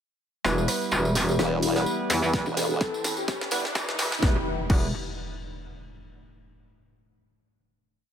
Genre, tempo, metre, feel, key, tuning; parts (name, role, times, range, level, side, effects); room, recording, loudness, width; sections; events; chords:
bass house; 127 BPM; 4/4; swing 56% on 16ths; E minor; A4 = 435 Hz
sweeping resonant pad; sustained chords; 1.4-4.4 s; E3 to B4; -34 LUFS; left 4 dB; chorus, phaser, sidechain pumping
percussive organ stab; stabs; 0.4-4.9 s; G3 to B4; -31 LUFS; right 3 dB; analog chorus, vintage 12-bit sampler grit, sidechain pumping, digital delay
metallic wobble bass; bass; 0.4-4.9 s; E1 to E2; -25 LUFS; equal; chorus, tube saturation, sidechain pumping
house drum kit; drums; 0.4-4.8 s; crash cymbal, hi-hat, rim click, snare drum; -31 LUFS; right 1 dB; high-pass filter on snare, high-pass filter on hats, high-pass filter on cymbals, high-pass filter on room
tambourine; percussion; 0.4-4.2 s; -35 LUFS; left 1 dB
riser and impact; sound effects; 2.3-6.1 s; -36 LUFS; equal
breathy flute-like synth lead; melody; 1.3-3.4 s; G4 to A4; -34 LUFS; equal; wide subtle chorus, digital delay
formant-sweep wobble bass; bass; 1.4-2.8 s; E1; -26 LUFS; equal; chorus, tube saturation, sidechain pumping
electronic kick drum; drums; 2.3-4.8 s; -24 LUFS; equal
light reverb; high-pass filter; -23 LUFS; side -8 dB against mid
0.4-4.2 build; 4.2-6.1 final chord
build-up 0.4-4.2; drum fill 0.4-4.2; filter sweep on analog synth pad 0.4-4.2; filter sweep 0.4-4.2; riser 2.3-4.2
0.4 Em